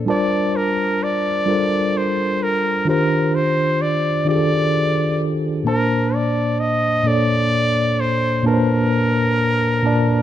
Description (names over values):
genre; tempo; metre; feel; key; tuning
R&B; 43 BPM (dotted quarters); 6/8; straight; unclear; A4 = 440 Hz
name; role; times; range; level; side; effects
mellow tine electric piano; accompaniment; 0.0-10.2 s; Bb2 to A5; -18 LUFS; equal; medium stereo tremolo
warm trumpet; melody; 0.1-10.2 s; Bb4 to Eb5; -20 LUFS; equal; ping-pong delay
room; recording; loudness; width
moderate studio reverb, RT60 0.8 s; dark, warm production; -16 LUFS; side -11 dB against mid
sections
0.0-10.2 A section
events
none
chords
0.1 Gm11; 2.9 Ebmaj13; 5.7 Bbmaj7